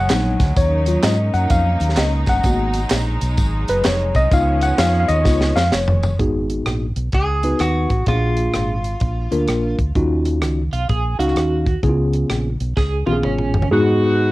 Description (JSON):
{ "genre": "uptempo gospel", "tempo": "128 BPM", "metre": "4/4", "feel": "swing 64% on 8ths", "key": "unclear", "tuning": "A4 = 440 Hz", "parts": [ { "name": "tine electric piano", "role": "accompaniment", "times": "0.0-14.3 s", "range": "G#2 to F#5", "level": "-19 LUFS", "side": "left 1 dB", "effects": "medium stereo tremolo, cassette tape" }, { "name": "bright studio string section", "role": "sustained chords", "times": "0.0-6.2 s", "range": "B2 to D#4", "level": "-27 LUFS", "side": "equal", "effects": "cassette tape" }, { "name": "fingered electric bass", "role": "bass", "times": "0.0-13.6 s", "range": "E#1 to G#2", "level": "-20 LUFS", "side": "equal", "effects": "none" }, { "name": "tight funk drum kit", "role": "drums", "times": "0.1-13.7 s", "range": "hi-hat, kick drum, rim click, snare drum, toms", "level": "-20 LUFS", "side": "equal", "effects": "cassette tape" }, { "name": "handclaps and tambourine", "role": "percussion", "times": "0.1-6.1 s", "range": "none", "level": "-33 LUFS", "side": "right 2 dB", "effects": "none" }, { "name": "lap resonator guitar", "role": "melody", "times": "7.1-9.7 s", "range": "E#4 to G#4", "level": "-23 LUFS", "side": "right 1 dB", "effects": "cassette tape, analog delay" }, { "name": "twelve-string electric guitar", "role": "second line", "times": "10.7-13.7 s", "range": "C#4 to G#4", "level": "-25 LUFS", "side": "right 5 dB", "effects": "tremolo, cassette tape" }, { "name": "clear saxophone section", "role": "melody", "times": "13.7-14.3 s", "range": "B3 to F#4", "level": "-17 LUFS", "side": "equal", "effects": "cassette tape" } ], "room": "light reverb", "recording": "home recording on cassette", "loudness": "-16 LUFS", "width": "side -19 dB against mid", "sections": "0.0-6.2 A section; 6.2-13.7 B section", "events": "tine electric piano solo 0.0-6.2; drum fill 5.3-6.2, 12.8-13.7", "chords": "0.0 C#7sus4; 0.6 D#m7; 2.4 G#m7; 4.3 C#7; 6.2 G#m7; 8.1 A#7; 10.0 D#m9; 11.8 C#7; 13.7 G#m7" }